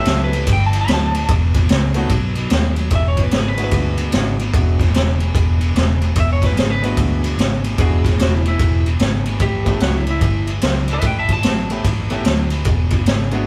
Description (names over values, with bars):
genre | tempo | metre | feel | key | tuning
electric blues shuffle | 148 BPM | 4/4 | swing 64% on 8ths | E mixolydian | A4 = 440 Hz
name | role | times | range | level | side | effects
lightly driven lead guitar | melody | 0.0-11.7 s | E4 to B5 | -25 LUFS | equal | none
clear baby grand piano | accompaniment | 0.0-13.5 s | G#3 to G4 | -28 LUFS | equal | none
crunchy overdriven guitar | riff | 0.0-13.5 s | E2 to G#3 | -28 LUFS | equal | none
vintage muted fingered electric bass | bass | 0.0-13.4 s | E1 to D#2 | -21 LUFS | equal | none
raw garage drum kit | drums | 0.1-13.4 s | kick drum, ride cymbal, snare drum | -21 LUFS | equal | none
room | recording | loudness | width
light reverb | band playing live in one room | -17 LUFS | mono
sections
0.0-2.9 A section; 2.9-13.5 A section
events
lead electric guitar solo 0.0-2.9, 2.9-13.5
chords
0.0 A9; 1.3 Esus2; 2.1 B; 2.9 E9; 9.4 A9; 12.7 E9